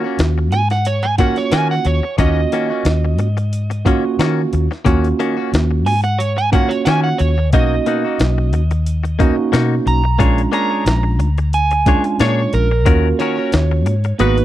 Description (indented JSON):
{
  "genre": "straight-eighth soul blues",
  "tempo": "90 BPM",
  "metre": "4/4",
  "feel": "swing 54% on 16ths",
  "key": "Eb minor",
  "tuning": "A4 = 440 Hz",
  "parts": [
    { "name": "tine electric piano", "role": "accompaniment", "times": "0.0-14.4 s", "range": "Ab3 to Gb4", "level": "-20 LUFS", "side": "right 5 dB", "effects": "none" },
    { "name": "direct-recorded clean electric guitar", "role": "stabs", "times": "0.0-14.4 s", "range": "B2 to C#5", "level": "-22 LUFS", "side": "left 8 dB", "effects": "none" },
    { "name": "vintage muted fingered electric bass", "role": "bass", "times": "0.2-14.4 s", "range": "Ab1 to Eb3", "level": "-16 LUFS", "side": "left 1 dB", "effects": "none" },
    { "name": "breakbeat sampler-style drum kit", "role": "drums", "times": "0.2-14.4 s", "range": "hi-hat, kick drum, snare drum", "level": "-18 LUFS", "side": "left 1 dB", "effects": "none" },
    { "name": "electric slide guitar", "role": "second line", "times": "0.5-14.4 s", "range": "Bb4 to A#5", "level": "-20 LUFS", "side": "right 4 dB", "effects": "none" }
  ],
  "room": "little or no reverb",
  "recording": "dry, close 1970s-style studio recording",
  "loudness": "-14 LUFS",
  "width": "side -13 dB against mid",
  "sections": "0.0-14.4 A section",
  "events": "electric slide guitar solo 0.0-14.4",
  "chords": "0.0 Ebm7; 7.5 Bmaj7; 10.2 Bb7#9; 12.9 Ebm7"
}